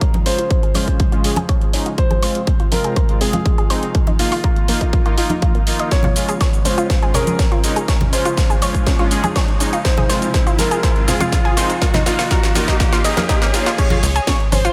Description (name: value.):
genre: progressive house.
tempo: 122 BPM.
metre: 4/4.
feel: straight.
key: Db major.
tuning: A4 = 440 Hz.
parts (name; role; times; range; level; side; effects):
dark baby grand piano; melody; 0.0-14.7 s; F4 to Db5; -27 LUFS; equal; sidechain pumping, tape echo.
airy breathy pad; sustained chords; 0.0-13.8 s; C3 to F4; -32 LUFS; equal; chorus, sidechain pumping.
analog pluck; arpeggios; 0.0-14.7 s; Bb3 to Eb5; -26 LUFS; equal; chorus, sidechain pumping, dub echo.
electronic kick drum; drums; 0.0-14.4 s; none; -19 LUFS; equal; none.
house drum kit; drums; 0.0-14.7 s; crash cymbal, hi-hat, shaker, snare drum; -26 LUFS; equal; high-pass filter on hats, high-pass filter on snare, high-pass filter on perc, high-pass filter on cymbals, high-pass filter on room.
riser and swell; sound effects; 5.1-13.8 s; none; -31 LUFS; equal; none.
congas; percussion; 0.1-14.6 s; none; -27 LUFS; equal; sidechain pumping on perc.
soft supersaw; stabs; 0.3-13.7 s; Ab3 to Ab4; -27 LUFS; equal; cassette tape, sidechain pumping, low-pass filter, dub echo.
rich studio violin section; second line; 13.8-14.7 s; C5 to Db5; -31 LUFS; equal; sidechain pumping.
tight sequencer bass; bass; 14.0-14.7 s; Ab1 to Db2; -20 LUFS; equal; sidechain pumping.
room: light reverb.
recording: none.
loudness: -17 LUFS.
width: mono.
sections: 0.0-13.8 A section.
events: build-up 0.0-13.8; filter sweep on synth arpeggio sound 0.0-13.8; filter sweep on supersaw synth 0.0-13.8; riser 5.1-13.8; drum fill 5.9-13.8; swell 12.8-13.8.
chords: 0.0 Db; 2.0 Fm; 3.9 Ebsus2; 5.9 Db; 9.8 Fm; 11.8 Ebsus2; 13.8 Db.